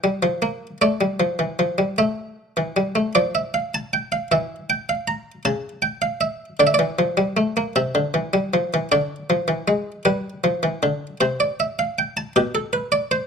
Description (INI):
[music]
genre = classical, baroque-style two-part invention for harpsichord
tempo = 52 BPM (dotted quarters)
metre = 6/8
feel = straight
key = D minor, C major from 7.8 s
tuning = A4 = 435 Hz
[part]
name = buff-stop harpsichord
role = solo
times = 0.0-13.3 s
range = B2 to Bb5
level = -19 LUFS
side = equal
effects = none
[sound]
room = light reverb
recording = close, detailed microphones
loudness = -20 LUFS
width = side -6 dB against mid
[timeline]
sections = 0.0-3.2 A section; 3.2-7.8 B section; 7.8-13.3 C section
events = none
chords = 0.0 Edim (rootless); 0.8 Asus4; 2.0 A5; 3.2 Dm/F; 4.3 Edim; 5.5 A7/C#; 6.6 Dm; 7.8 C; 8.9 Ddim; 10.1 G7; 11.2 C; 12.4 G/B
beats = | 0.81 1.99 | 3.16 4.31 | 5.45 6.59 | 7.75 8.91 | 10.06 11.20 | 12.36